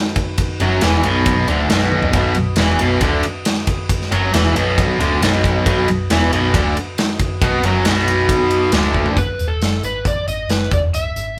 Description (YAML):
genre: blues rock power trio and southern rock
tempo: 136 BPM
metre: 4/4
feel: straight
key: unclear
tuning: A4 = 440 Hz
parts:
  - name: mellow tonewheel organ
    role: sustained chords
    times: 0.0-9.1 s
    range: D#4 to D#5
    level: -33 LUFS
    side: equal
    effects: none
  - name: big rock drum kit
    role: drums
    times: 0.2-11.3 s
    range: hi-hat, kick drum, ride cymbal, snare drum, toms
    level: -22 LUFS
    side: equal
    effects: none
  - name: biting overdriven guitar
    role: riff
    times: 0.6-9.2 s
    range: B1 to B3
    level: -18 LUFS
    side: equal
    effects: none
  - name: vintage muted picked electric bass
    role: bass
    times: 0.6-11.3 s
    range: B0 to B1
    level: -23 LUFS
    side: equal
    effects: none
  - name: overdriven slide guitar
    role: melody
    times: 9.2-11.4 s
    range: A4 to E5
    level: -25 LUFS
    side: equal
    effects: none
room: moderate studio reverb, RT60 0.6 s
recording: band playing live in one room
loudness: -17 LUFS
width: mono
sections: 0.0-9.2 A section; 9.2-11.4 B section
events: drum fill 1.9, 9.0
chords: 0.0 B; 10.7 E